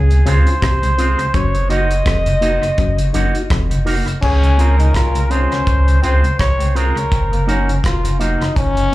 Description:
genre	roots reggae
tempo	83 BPM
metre	4/4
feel	swing 57% on 16ths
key	Db major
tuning	A4 = 439 Hz
part	clear flugelhorn	melody	0.0-7.8 s	Ab4 to Eb5	-21 LUFS	equal	dub echo, plate reverb, slapback echo
part	muted clav	riff	0.0-3.7 s	F2 to Db3	-21 LUFS	left 3 dB	none
part	soft dub sub bass	bass	0.0-8.9 s	F1 to Db2	-15 LUFS	equal	none
part	mellow tonewheel organ	accompaniment	0.1-8.9 s	Gb2 to Gb4	-24 LUFS	left 1 dB	slow rotary speaker, plate reverb
part	cloth-damped thuddy drum kit	drums	0.1-8.9 s	crash cymbal, hi-hat, kick drum, rim click	-21 LUFS	equal	dub echo
part	electric guitar with an envelope filter	accompaniment	0.3-8.9 s	Ab3 to Gb4	-25 LUFS	right 4 dB	dub echo, plate reverb, slapback echo
part	bright trombone	second line	4.2-8.9 s	Bb3 to F4	-22 LUFS	left 3 dB	dub echo, plate reverb
room	light reverb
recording	live gig heard through the venue's PA, club reverb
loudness	-13 LUFS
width	side -17 dB against mid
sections	0.0-4.2 A section; 4.2-8.9 B section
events	flugelhorn solo 0.0-4.2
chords	0.0 Dbmaj7; 1.3 Gb6; 4.2 Dbmaj7; 7.1 Gb6

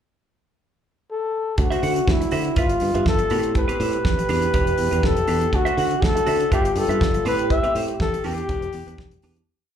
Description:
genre	disco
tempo	122 BPM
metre	4/4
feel	straight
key	unclear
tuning	A4 = 440 Hz
part	breathy flugelhorn	melody	1.1-9.2 s	E4 to E5	-23 LUFS	left 2 dB	slapback echo
part	clean electric guitar	accompaniment	1.6-9.4 s	C4 to F#5	-29 LUFS	right 9 dB	slapback echo
part	dark French horn section	sustained chords	1.6-9.5 s	D3 to G4	-30 LUFS	left 2 dB	none
part	modern bright fingered electric bass	bass	1.6-9.4 s	E1 to D3	-24 LUFS	right 1 dB	none
part	damped 70s drum kit	drums	1.6-9.5 s	hi-hat, kick drum, snare drum	-24 LUFS	equal	none
room	studio reverb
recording	live gig heard through the venue's PA, club reverb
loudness	-18 LUFS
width	side -9 dB against mid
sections	0.0-1.6 pickup bar; 1.6-9.5 verse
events	fade-out 7.5-9.5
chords	0.0 N.C.; 1.6 D9; 2.6 G6; 3.3 Am9; 4.3 Em7; 5.5 D9; 6.5 G13; 7.3 Am9; 8.2 Em7

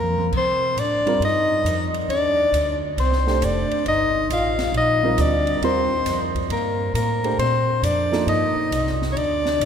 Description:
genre	modal jazz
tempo	136 BPM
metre	4/4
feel	swing 66% on 8ths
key	C dorian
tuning	A4 = 441 Hz
part	breathy soprano saxophone	melody	0.0-9.7 s	Bb4 to F5	-21 LUFS	left 2 dB	none
part	warm trombone	second line	0.0-9.7 s	Bb3 to F4	-26 LUFS	right 2 dB	none
part	upright bass	bass	0.0-9.7 s	F1 to C3	-25 LUFS	equal	none
part	open jazz drum kit	drums	0.0-9.7 s	crash cymbal, hi-hat, kick drum, ride cymbal, snare drum, toms	-32 LUFS	equal	none
part	dark grand piano	accompaniment	1.1-8.7 s	F3 to C5	-28 LUFS	right 4 dB	none
room	wet cathedral reverb, RT60 5.8 s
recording	recorded in a church or concert hall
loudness	-18 LUFS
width	side -8 dB against mid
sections	0.3-9.7 A section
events	drum fill 0.0-0.3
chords	0.3 Cm9

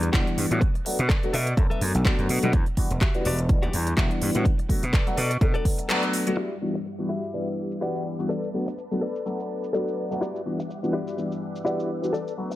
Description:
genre	filtered disco house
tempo	125 BPM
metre	4/4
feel	swing 55% on 16ths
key	E minor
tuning	A4 = 443 Hz
part	warm grand piano	accompaniment	0.0-12.5 s	E3 to F#5	-28 LUFS	left 1 dB	phaser, sidechain pumping, low-pass filter
part	direct-recorded clean electric guitar	riff	0.0-12.5 s	E4 to F#5	-31 LUFS	left 2 dB	tremolo, sidechain pumping, low-pass filter
part	gritty slap bass	bass	0.0-5.5 s	E1 to B2	-26 LUFS	equal	overdrive, tube saturation, sidechain pumping, low-pass filter
part	house drum kit	drums	0.0-12.6 s	cabasa, handclaps, hi-hat	-30 LUFS	equal	sidechain pumping on hats, low-pass filter on hats, low-pass filter on snare, sidechain pumping on perc, low-pass filter on perc
part	electronic kick drum	drums	0.1-5.8 s	none	-22 LUFS	equal	none
part	string machine, full ensemble	sustained chords	6.4-12.6 s	G3 to D6	-37 LUFS	left 1 dB	phaser, ensemble chorus, sidechain pumping, low-pass filter
room	light reverb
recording	none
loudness	-23 LUFS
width	side -15 dB against mid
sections	0.0-6.4 A section; 6.4-12.6 B section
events	clean electric guitar fill 1.1-2.5; kick drops out 5.9-6.4; band accent 5.9; filter sweep on drum 6.4-12.6; filter sweep 6.4-12.6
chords	0.0 Em9; 0.6 Bm7; 2.5 Em9; 4.5 Bm7; 6.4 Em9; 8.3 Bm7; 10.2 Em9

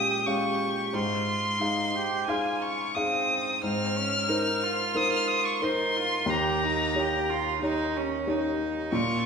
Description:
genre	neoclassical piano and strings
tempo	90 BPM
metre	4/4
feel	rubato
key	unclear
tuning	A4 = 440 Hz
part	rich violin	melody	0.0-9.3 s	Ab5 to F6	-28 LUFS	left 2 dB	none
part	rich cello	second line	0.0-9.3 s	C4 to G4	-30 LUFS	right 5 dB	none
part	felt-muted upright piano	accompaniment	0.0-9.3 s	Eb2 to F5	-29 LUFS	left 1 dB	none
room	wet recital hall reverb, RT60 1.4 s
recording	recorded in a church or concert hall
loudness	-24 LUFS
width	side -6 dB against mid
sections	0.0-9.3 A section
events	none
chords	0.0 Bbm7; 0.9 Fm7/Ab; 3.6 Abadd9; 6.3 Eb7

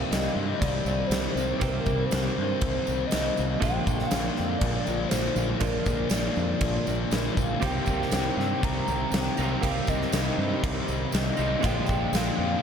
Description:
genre	rock, shoegaze and dream pop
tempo	120 BPM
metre	4/4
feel	straight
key	C minor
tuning	A4 = 440 Hz
part	hollow clarinet-like synth lead	melody	0.0-12.6 s	Bb4 to Bb5	-31 LUFS	left 1 dB	chorus, ping-pong delay
part	direct-recorded clean electric guitar	riff	0.0-12.6 s	Bb2 to G4	-33 LUFS	right 7 dB	reverse reverb
part	thick fuzz guitar	riff	0.0-12.6 s	Bb2 to C4	-31 LUFS	left 8 dB	distortion, lush chorus
part	growling fingered electric bass	bass	0.0-12.5 s	Bb1 to G2	-31 LUFS	equal	overdrive
part	huge arena drum kit	drums	0.1-12.3 s	crash cymbal, kick drum, snare drum	-29 LUFS	equal	none
part	tambourine	percussion	0.1-12.2 s	none	-43 LUFS	right 11 dB	none
part	cranked stack guitar	riff	7.6-12.6 s	Bb2 to Eb4	-34 LUFS	right 1 dB	overdrive
room	wet cathedral reverb, RT60 4.8 s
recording	dreamy mix soaked in reverb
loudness	-24 LUFS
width	side -7 dB against mid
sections	0.0-12.6 A section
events	none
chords	0.0 Cm7; 3.6 Bb7; 7.6 Cm7; 11.6 Bb7

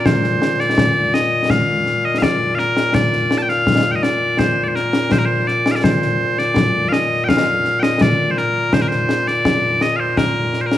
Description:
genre	scottish traditional, Scottish pipe music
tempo	83 BPM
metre	2/4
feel	straight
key	Bb major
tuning	A4 = 440 Hz
part	loud bright bagpipes	melody	0.0-10.8 s	Bb2 to A5	-17 LUFS	left 1 dB	none
part	concert snare drum and concert bass drum	drums	0.1-10.8 s	none	-18 LUFS	left 1 dB	none
room	moderate concert hall reverb, RT60 1.7 s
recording	none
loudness	-14 LUFS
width	side -12 dB against mid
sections	0.1-10.8 A section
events	none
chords	none

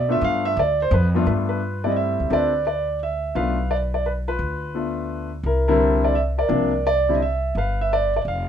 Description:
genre	jazz piano trio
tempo	172 BPM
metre	3/4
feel	swing 66% on 8ths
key	G mixolydian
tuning	A4 = 441 Hz
part	warm concert grand piano	melody	0.0-8.5 s	G2 to F5	-21 LUFS	equal	none
part	upright bass	bass	0.0-8.5 s	F1 to B2	-24 LUFS	equal	none
room	moderate studio ambience, RT60 0.5 s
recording	minimal, uncompressed stereo recording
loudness	-19 LUFS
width	side -8 dB against mid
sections	0.0-1.3 A section; 1.3-8.5 B section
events	grand piano solo 0.0-1.3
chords	0.0 G7; 5.5 C7; 7.6 G7

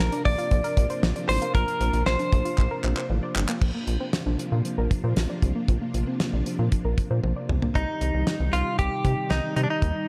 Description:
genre	synth-pop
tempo	116 BPM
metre	4/4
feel	straight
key	unclear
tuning	A4 = 440 Hz
part	direct-recorded clean electric guitar	melody	0.0-3.1, 7.8-10.1 s	D4 to D5	-30 LUFS	equal	tape echo
part	string machine, violas	sustained chords	0.0-10.1 s	Bb2 to G4	-35 LUFS	equal	ensemble chorus
part	warbly dusty pluck	arpeggios	0.0-7.7 s	F3 to D5	-35 LUFS	equal	chorus, tape echo
part	rubbery square bass	bass	0.0-9.9 s	G1 to C3	-28 LUFS	equal	none
part	damped 70s drum kit	drums	0.1-9.9 s	crash cymbal, handclaps, hi-hat, kick drum, snare drum, toms	-29 LUFS	equal	gated reverb
room	light reverb, small room ambience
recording	none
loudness	-25 LUFS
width	mono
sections	0.0-3.6 A section; 3.6-7.8 B section; 7.8-10.1 C section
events	drum fill 2.6-3.6, 7.2-7.8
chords	0.0 Bbadd9; 7.8 Cm

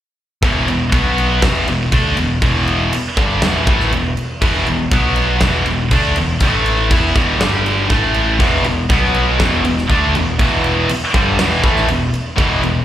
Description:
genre	hard rock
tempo	120 BPM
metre	4/4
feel	straight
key	E minor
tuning	A4 = 438 Hz
part	high-gain distorted guitar	riff	0.4-12.8 s	E2 to E4	-16 LUFS	equal	distortion, slapback echo
part	overdriven picked electric bass	bass	0.4-12.8 s	E1 to E2	-20 LUFS	equal	none
part	huge arena drum kit	drums	0.4-12.7 s	crash cymbal, kick drum, snare drum	-19 LUFS	equal	none
part	sludgy distorted guitar	riff	8.4-12.8 s	E2 to D4	-19 LUFS	equal	overdrive, slapback echo
room	small room reverb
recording	live gig heard through the venue's PA, club reverb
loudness	-13 LUFS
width	side -11 dB against mid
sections	0.4-12.8 A section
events	none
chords	0.4 E5; 0.9 B5; 1.4 Em; 4.9 B5; 5.4 E5; 6.4 A5; 6.9 E5; 7.4 G5; 7.9 A5; 8.4 E5; 8.9 B5; 9.4 Em

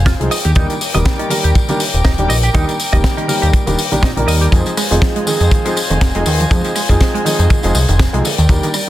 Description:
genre	nu-disco, nu disco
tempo	121 BPM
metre	4/4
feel	swing 56% on 16ths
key	unclear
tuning	A4 = 440 Hz
part	warm studio violin section	sustained chords	0.0-8.9 s	F4 to D6	-24 LUFS	left 2 dB	sidechain pumping
part	fat analog bass	bass	0.0-8.6 s	Eb1 to F2	-15 LUFS	equal	tube saturation
part	direct-recorded clean electric guitar	riff	0.1-4.5 s	Eb3 to Eb5	-24 LUFS	right 3 dB	analog chorus, tape echo
part	kick drum	drums	0.1-8.6 s	none	-14 LUFS	equal	none
part	tight funk drum kit	drums	0.1-8.9 s	hi-hat, rim click, snare drum, tambourine	-21 LUFS	left 2 dB	none
part	warm grand piano	accompaniment	0.2-8.7 s	Eb3 to D5	-19 LUFS	right 1 dB	sidechain pumping, tape echo
part	analog pluck	arpeggios	4.5-8.8 s	D3 to Ab3	-23 LUFS	right 3 dB	chorus, sidechain pumping, digital delay
room	small room reverb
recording	dense, heavily limited modern master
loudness	-12 LUFS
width	side -14 dB against mid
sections	0.0-8.9 A section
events	none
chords	0.3 Ebmaj7; 4.5 Fm7; 8.2 Ebmaj7

